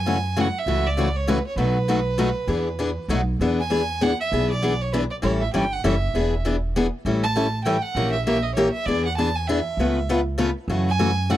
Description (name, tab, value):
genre	acoustic string swing (jazz manouche)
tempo	197 BPM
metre	3/4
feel	swing 58% on 8ths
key	E mixolydian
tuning	A4 = 440 Hz
part	clear violin	melody	0.0-11.4 s	B4 to A5	-26 LUFS	right 4 dB	none
part	upright bass	bass	0.0-11.4 s	E1 to F#2	-25 LUFS	right 1 dB	none
part	picked steel-string acoustic guitar	accompaniment	0.1-11.4 s	B2 to B4	-22 LUFS	left 2 dB	none
room	little or no reverb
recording	dry, close 1970s-style studio recording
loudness	-20 LUFS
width	side -13 dB against mid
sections	0.0-3.4 A section; 3.4-11.4 A section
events	none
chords	0.0 F#m7; 1.6 B7; 2.5 E7; 3.1 B7; 3.4 E7; 5.2 A7; 6.1 E7; 7.0 A7; 8.0 A#dim7; 8.9 E7; 9.8 C#7alt; 10.7 F#m7